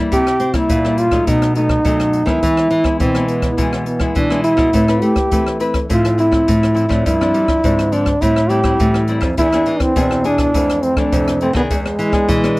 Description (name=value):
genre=samba and choro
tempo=104 BPM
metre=4/4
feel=straight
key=unclear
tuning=A4 = 436 Hz
part: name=nylon-string guitar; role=accompaniment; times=0.0-12.6 s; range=F2 to B4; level=-21 LUFS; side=left 2 dB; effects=none
part: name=nylon-string guitar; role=bass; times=0.0-12.6 s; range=E2 to C4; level=-19 LUFS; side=equal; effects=none
part: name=breathy trombone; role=melody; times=0.1-12.6 s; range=G#3 to G4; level=-16 LUFS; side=equal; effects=none
part: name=open jazz drum kit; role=drums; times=0.1-12.6 s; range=hi-hat, kick drum, rim click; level=-21 LUFS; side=equal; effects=none
room=light reverb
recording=dry, close 1970s-style studio recording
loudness=-13 LUFS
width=side -21 dB against mid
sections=0.0-12.6 A section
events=none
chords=0.1 C7; 1.3 B7; 2.4 E; 4.7 Amadd9; 5.9 Fmaj7/A; 7.1 G7sus4; 8.2 Am7; 9.4 E7; 10.5 Fmaj7; 11.7 E7